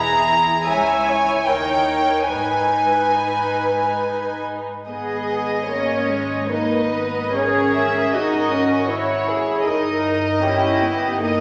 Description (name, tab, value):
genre	classical, slow romantic movement for string orchestra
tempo	68-80 BPM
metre	3/4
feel	rubato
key	G# minor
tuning	A4 = 439 Hz
part	clear studio violin section	melody	0.0-11.4 s	C#5 to A#5	-24 LUFS	equal	none
part	dark studio violin section	second line	0.0-11.4 s	D#4 to C#5	-26 LUFS	equal	none
part	warm studio viola section	accompaniment	0.0-11.4 s	G#3 to E5	-26 LUFS	equal	none
part	warm studio cello section	bass	0.0-11.4 s	C#2 to G#4	-28 LUFS	equal	none
part	dark studio double bass section	bass	4.9-11.4 s	G1 to G#1	-34 LUFS	equal	none
room	wet scoring stage reverb, RT60 1.9 s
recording	none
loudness	-20 LUFS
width	mono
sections	0.0-4.9 A section; 4.9-11.4 A section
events	none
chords	0.0 E; 0.7 C#m; 1.5 D#7; 2.3 G#m; 7.4 F#/G#; 9.7 D#7/G